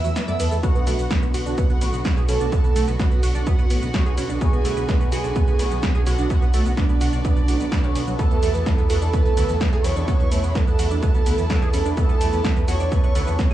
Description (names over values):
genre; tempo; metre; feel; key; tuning
melodic techno; 127 BPM; 4/4; straight; B dorian; A4 = 438 Hz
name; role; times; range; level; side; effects
wide unison lead; melody; 0.0-13.5 s; D4 to E5; -28 LUFS; right 4 dB; sidechain pumping, cassette tape, analog delay
rich chamber violin section; second line; 0.0-13.5 s; D5 to E6; -37 LUFS; left 1 dB; sidechain pumping, tape echo
warm studio string section; sustained chords; 0.0-13.5 s; A2 to F#4; -34 LUFS; right 1 dB; sidechain pumping
tight sequenced synth; arpeggios; 0.0-13.5 s; F#3 to D6; -30 LUFS; right 2 dB; chorus, phaser, sidechain pumping, tape echo
swelling detuned saw bass; bass; 0.0-13.5 s; E1 to F#2; -24 LUFS; right 1 dB; sidechain pumping
analog drone; drone; 0.0-13.5 s; B2 to F#3; -38 LUFS; equal; none
punchy analog drum machine; drums; 0.0-13.5 s; hi-hat, ride cymbal, shaker, snare drum; -30 LUFS; equal; cassette tape
sync-sweep polysynth; stabs; 0.3-13.5 s; D3 to A4; -32 LUFS; left 8 dB; chorus, sidechain pumping, tape echo
electronic kick drum; drums; 0.6-13.5 s; none; -20 LUFS; right 1 dB; cassette tape
room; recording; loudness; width
little or no reverb; home recording on cassette, studio reverb; -18 LUFS; side -13 dB against mid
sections
0.0-13.5 A section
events
break 0.0-0.6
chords
0.0 Esus4; 0.6 Bm; 8.2 Esus4